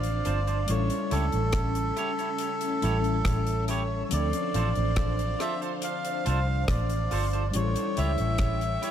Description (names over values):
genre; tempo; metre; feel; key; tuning
lovers rock reggae; 70 BPM; 4/4; straight; D minor; A4 = 444 Hz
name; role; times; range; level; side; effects
melodica; melody; 0.0-8.9 s; A4 to F5; -31 LUFS; equal; tape echo
string machine, full ensemble; second line; 0.0-8.9 s; C#4 to G5; -34 LUFS; equal; phaser, ensemble chorus
mellow tine electric piano; accompaniment; 0.0-8.9 s; F3 to A4; -35 LUFS; left 4 dB; medium stereo tremolo
vintage muted fingered electric bass; bass; 0.0-8.8 s; G1 to D2; -28 LUFS; equal; none
deep reggae drum kit; drums; 0.0-8.9 s; hi-hat, kick drum, rim click; -32 LUFS; equal; dub echo
twangy electric guitar; stabs; 0.3-8.9 s; D4 to C#5; -37 LUFS; right 6 dB; dub echo
room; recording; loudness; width
small room ambience; none; -25 LUFS; side -10 dB against mid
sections
0.0-8.9 A section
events
none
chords
0.0 Dm7; 0.7 A7; 4.1 Dm7; 7.5 A7